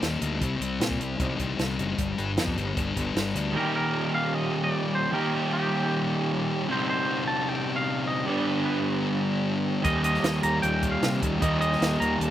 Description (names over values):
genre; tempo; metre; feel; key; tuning
indie rock; 153 BPM; 4/4; straight; unclear; A4 = 440 Hz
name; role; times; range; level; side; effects
twangy electric guitar; melody; 0.0-0.2, 3.6-12.3 s; G4 to Bb5; -29 LUFS; equal; spring reverb
thick fuzz guitar; riff; 0.0-12.3 s; G2 to Eb4; -28 LUFS; left 5 dB; distortion, slapback echo
fuzz fingered electric bass; bass; 0.0-3.5, 9.8-12.3 s; F#1 to C3; -30 LUFS; equal; overdrive
compact cocktail drum kit; drums; 0.0-3.4, 9.8-12.3 s; hi-hat, kick drum, snare drum; -30 LUFS; right 1 dB; none
raw garage guitar; riff; 3.5-12.3 s; G2 to G4; -28 LUFS; right 6 dB; overdrive
room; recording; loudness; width
little or no reverb; recorded outdoors, with no room sound; -24 LUFS; side -12 dB against mid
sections
0.0-3.6 A section; 3.6-12.3 B section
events
none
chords
0.4 Cm; 2.0 G; 3.6 Eb; 6.7 Cm; 8.3 G; 9.8 Eb